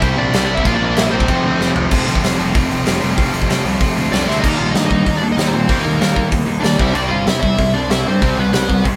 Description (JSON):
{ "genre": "punk rock", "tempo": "190 BPM", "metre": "4/4", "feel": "straight", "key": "unclear", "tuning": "A4 = 436 Hz", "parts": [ { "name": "smooth overdriven lead guitar", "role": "melody", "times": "0.0-1.7, 4.1-8.8 s", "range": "Bb3 to F5", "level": "-23 LUFS", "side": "equal", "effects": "none" }, { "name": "distorted electric guitar", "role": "riff", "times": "0.0-9.0 s", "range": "F2 to F4", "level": "-22 LUFS", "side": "equal", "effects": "overdrive" }, { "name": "raw garage guitar", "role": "riff", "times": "0.0-9.0 s", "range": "F2 to Eb4", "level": "-27 LUFS", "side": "equal", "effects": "overdrive" }, { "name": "sludgy distorted guitar", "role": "riff", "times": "0.0-9.0 s", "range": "F2 to Eb4", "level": "-26 LUFS", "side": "equal", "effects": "overdrive" }, { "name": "growling picked electric bass", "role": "bass", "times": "0.0-9.0 s", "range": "F1 to Bb2", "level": "-26 LUFS", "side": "equal", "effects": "overdrive" }, { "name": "big rock drum kit", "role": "drums", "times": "0.0-8.9 s", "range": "crash cymbal, hi-hat, kick drum, snare drum, toms", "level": "-21 LUFS", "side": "equal", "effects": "none" } ], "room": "light reverb", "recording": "band playing live in one room", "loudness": "-16 LUFS", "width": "mono", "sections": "0.0-1.9 A section; 1.9-4.4 B section; 4.4-9.0 C section", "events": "drum fill 1.6-1.9, 4.3", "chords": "0.0 C; 0.7 Bb; 1.3 F; 4.4 Eb; 6.8 C" }